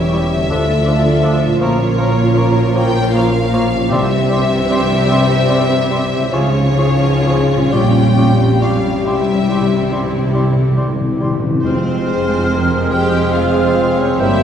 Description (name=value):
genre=classical, slow romantic movement for symphony orchestra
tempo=41-55 BPM (dotted quarters)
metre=6/8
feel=rubato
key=F minor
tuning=A4 = 438 Hz
part: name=warm symphonic violin section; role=melody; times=0.0-14.4 s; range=C5 to G5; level=-22 LUFS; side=left 3 dB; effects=none
part: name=warm symphonic violin section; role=second line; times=0.0-14.4 s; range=C4 to D5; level=-25 LUFS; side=left 3 dB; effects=none
part: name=warm symphonic viola section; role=accompaniment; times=0.0-14.4 s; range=E3 to Ab4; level=-23 LUFS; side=right 1 dB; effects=none
part: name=mellow French horn section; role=sustained chords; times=0.0-14.4 s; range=C4 to C5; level=-22 LUFS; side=left 3 dB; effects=none
part: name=mellow trombone section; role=sustained chords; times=0.0-14.4 s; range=F2 to C4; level=-22 LUFS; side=right 2 dB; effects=none
part: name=concert harp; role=arpeggios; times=0.0-14.4 s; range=F2 to C6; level=-23 LUFS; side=left 3 dB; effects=none
part: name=rich symphonic cello section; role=bass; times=0.0-14.4 s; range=D2 to Db3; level=-20 LUFS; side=right 1 dB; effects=none
part: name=rich symphonic double bass section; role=bass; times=0.0-14.4 s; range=E1 to D2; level=-20 LUFS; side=right 2 dB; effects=none
part: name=mellow clarinet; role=second line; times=0.1-14.4 s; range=Bb3 to F4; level=-27 LUFS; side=left 2 dB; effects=none
part: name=mellow cor anglais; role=second line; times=0.1-14.4 s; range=G4 to C5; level=-28 LUFS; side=right 2 dB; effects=none
part: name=silver concert flute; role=second line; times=0.1-14.4 s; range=C6 to G6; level=-28 LUFS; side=right 1 dB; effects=none
part: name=warm bassoon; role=accompaniment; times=0.1-14.4 s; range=F3 to Bb3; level=-25 LUFS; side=left 1 dB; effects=none
part: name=timpani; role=percussion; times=3.9-5.0, 9.1-12.9 s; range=F2 to C3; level=-21 LUFS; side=left 1 dB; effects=none
room=wet scoring stage reverb, RT60 1.6 s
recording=heard from further back in the room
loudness=-12 LUFS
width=side -8 dB against mid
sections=0.0-11.6 A section; 11.6-14.4 B section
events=timpani fill 9.1-11.6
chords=0.0 C#dim/E; 0.5 Dm; 1.6 Bbm; 3.9 C; 6.3 Db; 7.7 Gm7b5/Bb; 9.1 C; 11.6 Fm